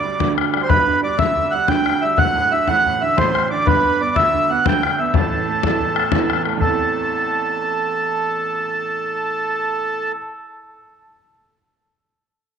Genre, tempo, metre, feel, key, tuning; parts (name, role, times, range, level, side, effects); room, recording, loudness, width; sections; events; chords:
celtic folk, Celtic slip jig; 122 BPM (dotted quarters); 9/8; straight; A dorian; A4 = 440 Hz
mellow accordion; melody; 0.0-10.1 s; A4 to G5; -18 LUFS; right 1 dB
clear upright piano; accompaniment; 0.0-10.2 s; D1 to E4; -24 LUFS; right 9 dB
bodhran; percussion; 0.2-6.8 s; -21 LUFS; left 7 dB
wet spring reverb, RT60 2.2 s; 1960s-style stereo with parts hard left and right; -16 LUFS; side -7 dB against mid
0.0-6.6 A section; 6.6-9.5 B section
0.0 G; 2.2 D; 3.7 G; 5.1 A5; 6.6 Am